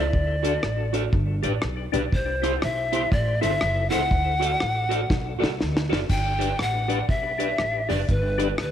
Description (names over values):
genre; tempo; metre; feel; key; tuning
ska; 121 BPM; 4/4; swing 62% on 8ths; G major; A4 = 441 Hz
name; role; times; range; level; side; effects
breathy bright pan flute; melody; 0.0-8.7 s; B4 to G5; -26 LUFS; left 1 dB; none
electric guitar at the edge of break-up; accompaniment; 0.0-8.5 s; E4 to D5; -31 LUFS; right 10 dB; none
percussive tonewheel organ; stabs; 0.0-8.5 s; D4 to D5; -31 LUFS; left 10 dB; chorus vibrato, slow rotary speaker, tape echo
upright bass; bass; 0.0-8.7 s; F#1 to D2; -27 LUFS; equal; none
deep reggae drum kit; drums; 0.1-8.7 s; crash cymbal, hi-hat, kick drum, rim click, snare drum; -27 LUFS; equal; none
room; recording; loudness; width
moderate echo chamber reverb, RT60 2.0 s; 1960s-style stereo with parts hard left and right; -21 LUFS; side -10 dB against mid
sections
0.0-6.1 A section; 6.1-8.7 B section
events
drum fill 5.1-6.1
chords
0.1 D; 1.1 G; 2.1 C; 3.1 Am; 4.1 D; 6.1 G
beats
| 0.14 0.63 1.13 1.63 | 2.12 2.62 3.12 3.61 | 4.11 4.61 5.10 5.60 | 6.10 6.59 7.09 7.59 | 8.09 8.59